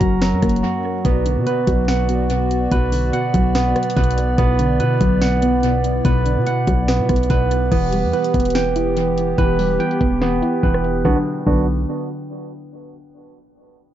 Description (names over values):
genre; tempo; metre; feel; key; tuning
hip hop, trap; 144 BPM; 4/4; half-time; B harmonic minor; A4 = 441 Hz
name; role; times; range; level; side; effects
soft round pluck; accompaniment; 0.0-11.7 s; F#2 to E4; -21 LUFS; left 1 dB; chorus, dub echo
hollow soft pad; sustained chords; 0.0-11.2 s; B2 to D5; -27 LUFS; left 2 dB; chorus
barky tine electric piano; arpeggios; 0.0-11.7 s; F#3 to A#5; -21 LUFS; right 5 dB; dub echo
hard-hitting 808-style bass; bass; 0.0-11.9 s; E1 to B2; -22 LUFS; equal; none
trap drum kit; drums; 0.0-11.6 s; crash cymbal, hi-hat, kick drum, rim click, snare drum; -23 LUFS; equal; dub echo
room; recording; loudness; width
moderate spring reverb, RT60 2.0 s; echo-heavy mix, vinyl crackle, low-pass filter, nothing above 7.6 kHz; -15 LUFS; side -11 dB against mid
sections
0.0-7.7 A section; 7.7-11.0 B section; 11.0-12.7 C section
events
break 0.6-1.0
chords
0.0 F#; 1.0 Bm; 7.7 Em; 11.0 Bm